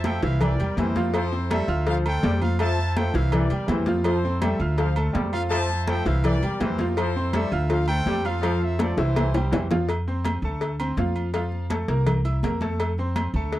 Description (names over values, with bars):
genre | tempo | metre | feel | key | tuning
latin, salsa | 165 BPM | 4/4 | straight | F major | A4 = 440 Hz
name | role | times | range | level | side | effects
bright trumpet section | melody | 0.0-9.7 s | E4 to A5 | -31 LUFS | equal | none
mellow trombone section | second line | 0.0-9.7 s | E3 to G3 | -29 LUFS | left 2 dB | none
upright bass | bass | 0.0-13.6 s | C2 to F2 | -25 LUFS | equal | none
congas | percussion | 0.0-13.6 s | none | -29 LUFS | left 1 dB | none
cowbell and bongos | percussion | 0.0-13.6 s | none | -31 LUFS | left 4 dB | none
bright grand piano | accompaniment | 0.1-13.6 s | E3 to F6 | -29 LUFS | right 1 dB | none
agogo bells and timbales | percussion | 0.1-13.6 s | none | -34 LUFS | right 4 dB | none
room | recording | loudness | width
little or no reverb | dry, close 1970s-style studio recording | -21 LUFS | side -14 dB against mid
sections
0.0-9.9 A section; 9.9-13.6 B section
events
drum fill 8.8-9.9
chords
0.4 C7; 1.1 Fmaj7; 1.9 Dm7; 2.6 Fmaj7; 3.3 C7; 4.1 Fmaj7; 4.8 Dm7; 5.5 Fmaj7; 6.2 C7; 7.0 Fmaj7; 7.7 Dm7; 8.4 Fmaj7; 9.2 C; 9.9 Dm7; 11.3 F; 12.1 C7; 12.8 Dm7